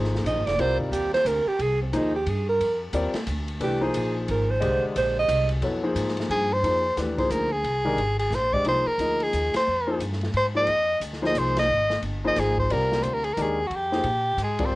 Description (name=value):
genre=modal jazz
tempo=178 BPM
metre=3/4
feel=swing 62% on 8ths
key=F dorian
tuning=A4 = 438 Hz
part: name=warm grand piano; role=accompaniment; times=0.0-14.7 s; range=D3 to Eb5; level=-28 LUFS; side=left 2 dB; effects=cassette tape, plate reverb
part: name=upright bass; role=bass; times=0.0-14.8 s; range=F1 to Bb2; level=-29 LUFS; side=equal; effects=none
part: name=open jazz drum kit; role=drums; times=0.0-14.7 s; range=hi-hat, kick drum, ride cymbal, snare drum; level=-35 LUFS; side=equal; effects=cassette tape
part: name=clear alto saxophone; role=second line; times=0.3-5.5, 14.4-14.8 s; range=Ab3 to Eb5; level=-24 LUFS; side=right 3 dB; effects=cassette tape, plate reverb
part: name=clear soprano saxophone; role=melody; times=6.3-14.8 s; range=Gb4 to Eb5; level=-23 LUFS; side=equal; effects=plate reverb
room=light reverb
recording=home recording on cassette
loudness=-22 LUFS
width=side -19 dB against mid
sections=0.0-6.6 A section; 6.6-14.8 B section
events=alto saxophone solo 0.0-6.6; band accent 9.5, 11.5, 14.6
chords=0.0 Fm9